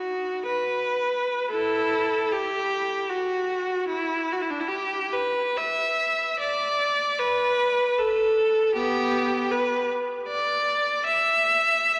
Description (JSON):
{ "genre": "classical, free, expressive piece for unaccompanied viola", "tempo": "51-80 BPM", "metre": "3/4", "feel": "rubato", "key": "E minor", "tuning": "A4 = 440 Hz", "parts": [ { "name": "bright viola", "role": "solo", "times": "0.0-12.0 s", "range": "B3 to E5", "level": "-24 LUFS", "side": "equal", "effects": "none" } ], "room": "wet church reverb, RT60 3.4 s", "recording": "vinyl crackle", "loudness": "-25 LUFS", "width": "mono", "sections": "0.0-1.5 A section; 1.5-12.0 B section", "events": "none", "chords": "none" }